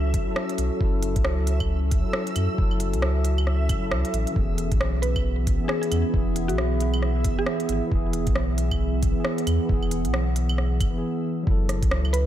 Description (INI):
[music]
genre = future garage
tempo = 135 BPM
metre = 4/4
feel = swing 60% on 16ths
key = unclear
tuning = A4 = 441 Hz
[part]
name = tine electric piano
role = accompaniment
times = 0.0-12.3 s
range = E3 to A4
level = -30 LUFS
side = left 3 dB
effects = medium tremolo, sidechain pumping, ping-pong delay
[part]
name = warbly tape-like pad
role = sustained chords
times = 0.0-12.3 s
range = B3 to F#5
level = -31 LUFS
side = right 3 dB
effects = chorus, built-in reverb, vintage 12-bit sampler grit, sidechain pumping
[part]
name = warm sub bass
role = bass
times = 0.0-12.3 s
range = E1 to F#2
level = -24 LUFS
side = equal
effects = sidechain pumping
[part]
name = backwards swelling texture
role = texture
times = 0.0-11.0 s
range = E5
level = -39 LUFS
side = right 3 dB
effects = built-in reverb
[part]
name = electronic kick drum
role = drums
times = 0.1-11.9 s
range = none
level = -24 LUFS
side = equal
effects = studio reverb
[part]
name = organic electronic drum kit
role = drums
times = 0.1-12.2 s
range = claves, hi-hat, rim click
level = -31 LUFS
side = right 1 dB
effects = studio reverb
[part]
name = mallet-like synth pluck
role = melody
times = 5.0-8.0, 12.1-12.3 s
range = F#4 to B4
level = -31 LUFS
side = equal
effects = chorus, ping-pong delay
[sound]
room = digital ambience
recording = none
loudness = -21 LUFS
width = side -12 dB against mid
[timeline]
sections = 0.0-11.5 A section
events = stop 11.0-11.5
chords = 0.0 F#m7; 4.4 E; 11.5 F#m7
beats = 0.36 | 0.80 1.25 1.69 2.14 | 2.58 3.02 3.47 3.91 | 4.36 4.80 5.25 5.69 | 6.14 6.58 7.03 7.47 | 7.91 8.36 8.80 9.25 | 9.69 10.14 10.58 11.03 | 11.47 11.91